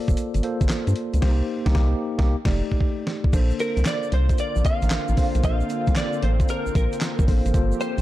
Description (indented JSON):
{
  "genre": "R&B, new jack swing",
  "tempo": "114 BPM",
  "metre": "4/4",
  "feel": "swing 66% on 16ths",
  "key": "Bb major",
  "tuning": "A4 = 440 Hz",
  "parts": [
    { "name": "mellow tine electric piano", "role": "accompaniment", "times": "0.0-8.0 s", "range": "A3 to D5", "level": "-28 LUFS", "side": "left 1 dB", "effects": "medium stereo tremolo" },
    { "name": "solid FM bass", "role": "bass", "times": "0.1-8.0 s", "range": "F1 to G2", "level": "-21 LUFS", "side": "equal", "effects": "none" },
    { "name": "dusty soul sampler-style drum kit", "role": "drums", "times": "0.1-8.0 s", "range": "crash cymbal, handclaps, hi-hat, kick drum, snare drum", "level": "-23 LUFS", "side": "equal", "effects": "none" },
    { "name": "tube shaker", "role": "percussion", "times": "0.1-8.0 s", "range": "none", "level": "-46 LUFS", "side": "right 9 dB", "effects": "none" },
    { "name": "lush unison pad", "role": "sustained chords", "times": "3.3-8.0 s", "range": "D3 to G4", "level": "-32 LUFS", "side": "equal", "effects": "chorus" },
    { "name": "direct-recorded clean electric guitar", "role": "melody", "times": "3.6-8.0 s", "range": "Bb4 to F5", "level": "-28 LUFS", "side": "equal", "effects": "ensemble chorus" }
  ],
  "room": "digital ambience",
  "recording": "dark, warm production",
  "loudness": "-20 LUFS",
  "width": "side -15 dB against mid",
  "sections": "0.0-3.3 A section; 3.3-8.0 B section",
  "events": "band accent 1.2-3.3; drum fill 2.3-3.3",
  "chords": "0.0 Gm11; 1.2 Cm7; 2.3 F13; 3.3 Bbmaj9"
}